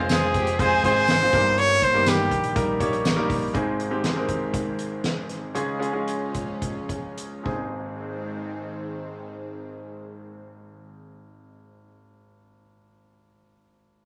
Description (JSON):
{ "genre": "piano-driven pop", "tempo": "103-122 BPM", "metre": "4/4", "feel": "straight", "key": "Ab major", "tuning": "A4 = 441 Hz", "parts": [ { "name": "warm symphonic violin section", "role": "second line", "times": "0.0-1.3 s", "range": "F4 to Ab5", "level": "-30 LUFS", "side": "equal", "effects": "none" }, { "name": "clear concert grand piano", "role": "accompaniment", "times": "0.0-14.1 s", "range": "Ab1 to Db5", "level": "-30 LUFS", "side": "equal", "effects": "none" }, { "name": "lush unison pad", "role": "sustained chords", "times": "0.3-11.9 s", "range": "Eb3 to Db4", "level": "-38 LUFS", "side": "equal", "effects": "chorus, phaser" }, { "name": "fingered electric bass", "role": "bass", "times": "0.0-3.5 s", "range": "F1 to Bb1", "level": "-33 LUFS", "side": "equal", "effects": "none" }, { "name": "clear trumpet", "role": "melody", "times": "0.1-2.6 s", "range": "G4 to Db5", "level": "-22 LUFS", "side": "equal", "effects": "none" }, { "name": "soft-mallet drum kit", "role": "drums", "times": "0.1-7.6 s", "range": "hi-hat, kick drum, ride cymbal, snare drum", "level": "-31 LUFS", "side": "equal", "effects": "none" }, { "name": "tambourine", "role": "percussion", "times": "0.1-3.2 s", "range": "none", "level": "-42 LUFS", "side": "equal", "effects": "none" } ], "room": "wet studio reverb, RT60 0.9 s", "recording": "none", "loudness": "-24 LUFS", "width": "mono", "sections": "0.0-3.5 A section; 3.5-7.7 B section; 7.7-12.4 C section", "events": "slowing down 3.5-7.7", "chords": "0.0 Fm; 1.3 Eb/G; 3.5 Ab; 5.6 Db; 7.5 Ab" }